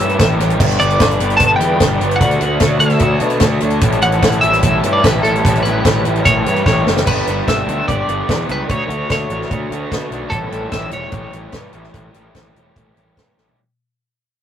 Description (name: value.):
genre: indie rock.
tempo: 148 BPM.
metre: 4/4.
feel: straight.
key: unclear.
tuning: A4 = 439 Hz.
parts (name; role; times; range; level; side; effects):
twelve-string electric guitar; melody; 0.0-13.1 s; A4 to A5; -18 LUFS; equal; tremolo.
raw garage guitar; riff; 0.0-13.6 s; G2 to G4; -19 LUFS; equal; overdrive.
fuzz picked electric bass; bass; 0.0-13.5 s; E1 to B2; -20 LUFS; equal; overdrive.
compact cocktail drum kit; drums; 0.0-13.6 s; crash cymbal, hi-hat, kick drum, snare drum, toms; -17 LUFS; equal; none.
hollow soft pad; sustained chords; 0.6-7.0 s; F#4 to B5; -24 LUFS; left 1 dB; ensemble chorus.
room: moderate booth ambience, RT60 0.2 s.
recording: rough rehearsal-room recording, tube saturation.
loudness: -13 LUFS.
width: side -9 dB against mid.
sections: 0.0-7.1 A section; 7.1-13.6 B section.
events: drum fill 6.7-7.1, 13.4; fade-out 7.1-13.6.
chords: 0.0 A7; 0.6 G; 2.2 Dmaj7; 3.8 A7; 7.1 G; 8.7 Dmaj7; 10.3 A7.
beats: 0.20 | 0.60 1.01 1.41 1.81 | 2.22 2.62 3.02 3.43 | 3.83 4.24 4.64 5.04 | 5.45 5.85 6.25 6.66 | 7.06 7.47 7.88 8.28 | 8.69 9.09 9.50 9.91 | 10.31 10.72 11.13 11.54 | 11.95 12.35 12.76 13.17.